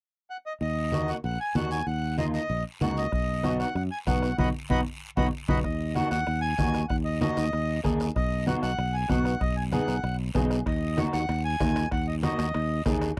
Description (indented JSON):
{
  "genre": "latin, cumbia",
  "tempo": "191 BPM",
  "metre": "4/4",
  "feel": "straight",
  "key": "Eb minor",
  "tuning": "A4 = 441 Hz",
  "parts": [
    { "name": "accordion", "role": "melody", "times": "0.3-12.8 s", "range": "Eb5 to B5", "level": "-34 LUFS", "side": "equal", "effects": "none" },
    { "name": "modern bright fingered electric bass", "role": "bass", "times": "0.6-13.2 s", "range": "Bb1 to F#2", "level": "-31 LUFS", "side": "equal", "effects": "none" },
    { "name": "congas", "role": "percussion", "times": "0.6-13.0 s", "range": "none", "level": "-34 LUFS", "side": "equal", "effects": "none" },
    { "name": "guiro", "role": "percussion", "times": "0.6-13.2 s", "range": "none", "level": "-48 LUFS", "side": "equal", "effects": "none" },
    { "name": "electric guitar through a small old amp", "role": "accompaniment", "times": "0.9-13.1 s", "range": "Bb3 to Ab4", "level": "-32 LUFS", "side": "equal", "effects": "ensemble chorus" },
    { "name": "bombo", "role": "percussion", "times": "3.1-13.2 s", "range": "none", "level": "-34 LUFS", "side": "equal", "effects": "none" },
    { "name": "timbales", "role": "percussion", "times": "10.7-13.2 s", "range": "none", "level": "-44 LUFS", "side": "equal", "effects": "none" }
  ],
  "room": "little or no reverb",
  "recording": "dry, close 1970s-style studio recording",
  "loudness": "-27 LUFS",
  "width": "mono",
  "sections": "0.6-5.6 A section; 5.6-13.2 B section",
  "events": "band accent 4.4-5.6",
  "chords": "0.0 N.C.; 0.6 Ebm; 3.1 B; 5.6 Ebm; 8.2 B; 10.7 Ebm"
}